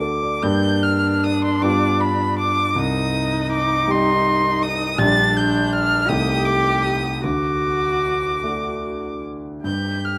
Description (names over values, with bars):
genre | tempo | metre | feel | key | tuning
classical, slow romantic movement for piano trio | 46-56 BPM (dotted quarters) | 6/8 | rubato | G minor | A4 = 443 Hz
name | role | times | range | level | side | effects
dark violin | melody | 0.0-10.2 s | B5 to A6 | -24 LUFS | equal | none
dark concert grand piano | accompaniment | 0.0-10.2 s | Bb1 to D5 | -24 LUFS | equal | none
dark cello | second line | 0.4-10.2 s | D4 to G4 | -27 LUFS | equal | none
room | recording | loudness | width
light reverb | close, detailed microphones | -20 LUFS | mono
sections
0.4-10.2 A section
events
none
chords
0.4 Gm; 1.6 G7; 2.8 Cm; 5.0 Gm/Bb; 6.1 Am7b5/C; 7.2 D; 9.6 N.C.